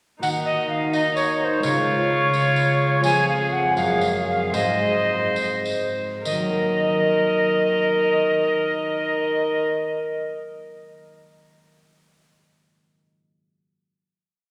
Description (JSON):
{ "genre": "classical, renaissance-style consort dance", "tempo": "65-86 BPM (dotted quarters)", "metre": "6/8", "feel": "straight", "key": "Eb dorian", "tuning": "A4 = 440 Hz", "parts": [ { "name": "alto recorder", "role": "melody", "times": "0.2-9.7 s", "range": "C5 to Ab5", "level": "-25 LUFS", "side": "equal", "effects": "none" }, { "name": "warm viola", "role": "second line", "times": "0.2-9.7 s", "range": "Eb4 to C5", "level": "-26 LUFS", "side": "equal", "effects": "none" }, { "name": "concert harp", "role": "accompaniment", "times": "0.2-10.1 s", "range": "Gb2 to Bb4", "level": "-30 LUFS", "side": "equal", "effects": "none" }, { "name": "clear trombone", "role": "bass", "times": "0.2-9.7 s", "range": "F2 to Eb3", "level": "-34 LUFS", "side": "equal", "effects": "none" }, { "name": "tambourine", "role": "percussion", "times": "0.2-6.5 s", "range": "none", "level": "-39 LUFS", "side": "equal", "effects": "none" } ], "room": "wet church reverb, RT60 3.1 s", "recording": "none", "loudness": "-21 LUFS", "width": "mono", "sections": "0.2-6.2 A section; 6.2-9.9 final chord", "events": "slowing down 2.3-6.2", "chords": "0.2 Ebm; 1.6 Db; 3.0 Fm; 4.5 Ab; 6.2 Ebm" }